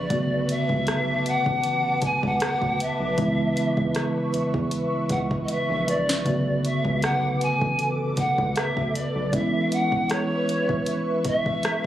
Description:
contemporary R&B; 78 BPM; 4/4; swing 54% on 16ths; B dorian; A4 = 442 Hz
breathy polished pan flute; melody; 0.0-11.9 s; C#5 to G#5; -26 LUFS; equal; tape echo
mellow tine electric piano; accompaniment; 0.0-11.9 s; C#3 to G#4; -26 LUFS; right 1 dB; medium stereo tremolo
ethereal airy pad; sustained chords; 0.0-11.9 s; A4 to D6; -31 LUFS; equal; ensemble chorus, built-in reverb, tremolo, sidechain pumping
rubbery square bass; bass; 0.0-9.3 s; A1 to E2; -32 LUFS; equal
smooth R&B drum kit; drums; 0.1-11.8 s; hi-hat, kick drum, rim click, snare drum; -28 LUFS; equal
light reverb; recorded on a phone in the room, club reverb, compression; -22 LUFS; side -12 dB against mid
0.0-11.9 A section
drum fill 5.5-6.3
0.1 Bm7; 3.2 C#m7; 6.3 Bm7; 9.3 C#m7

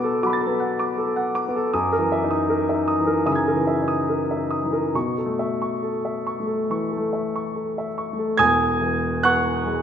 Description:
classical, impressionist solo piano; 68-81 BPM; 4/4; rubato; A4 = 439 Hz
warm grand piano; solo; 0.0-9.8 s; E1 to A6; -20 LUFS; equal
moderate concert hall reverb, RT60 2.1 s; minimal, uncompressed stereo recording; -20 LUFS; side -8 dB against mid
0.0-8.4 A section; 8.4-9.8 B section
0.0 Bm7; 1.7 F#13; 4.9 B9sus4; 8.4 Eadd9

